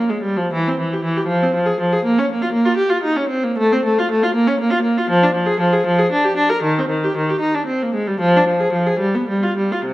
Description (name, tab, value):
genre	classical, baroque-style suite movement for unaccompanied viola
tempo	71-82 BPM (dotted quarters)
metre	6/8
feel	rubato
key	C minor from 5.1 s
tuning	A4 = 440 Hz
part	warm viola	solo	0.0-9.9 s	C3 to Bb4	-15 LUFS	equal	none
room	wet recital hall reverb, RT60 1.6 s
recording	none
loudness	-15 LUFS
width	side -16 dB against mid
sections	0.0-9.9 A section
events	none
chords	none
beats	| 0.50 1.28 | 2.02 2.77 | 3.57 4.34 | 5.08 5.84 | 6.64 7.42 | 8.21 9.00 | 9.83